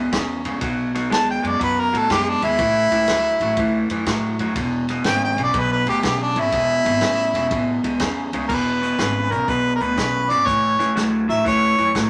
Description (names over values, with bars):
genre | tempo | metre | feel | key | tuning
electric blues shuffle | 122 BPM | 4/4 | swing 67% on 8ths | E mixolydian | A4 = 440 Hz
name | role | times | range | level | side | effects
electric guitar through a small old amp | riff | 0.0-12.1 s | E2 to G#3 | -25 LUFS | equal | none
upright bass | bass | 0.0-12.1 s | E1 to A2 | -29 LUFS | equal | none
swinging big-band drum kit | drums | 0.1-12.1 s | crash cymbal, hi-hat, kick drum, ride cymbal, snare drum | -30 LUFS | equal | none
clear harmonica | melody | 1.1-11.9 s | D4 to A5 | -22 LUFS | equal | overdrive
room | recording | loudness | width
wet studio reverb, RT60 0.8 s | none | -20 LUFS | mono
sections
0.0-8.5 A section; 8.5-12.1 B section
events
harmonica solo 0.0-8.5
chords
0.0 E5; 0.6 B; 2.6 A5; 4.5 E; 10.5 A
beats
0.12 | 0.61 1.10 1.60 2.09 | 2.58 3.07 3.57 4.06 | 4.55 5.04 5.53 6.03 | 6.52 7.01 7.50 8.00 | 8.49 8.99 9.48 9.97 | 10.47 10.96 11.46 11.96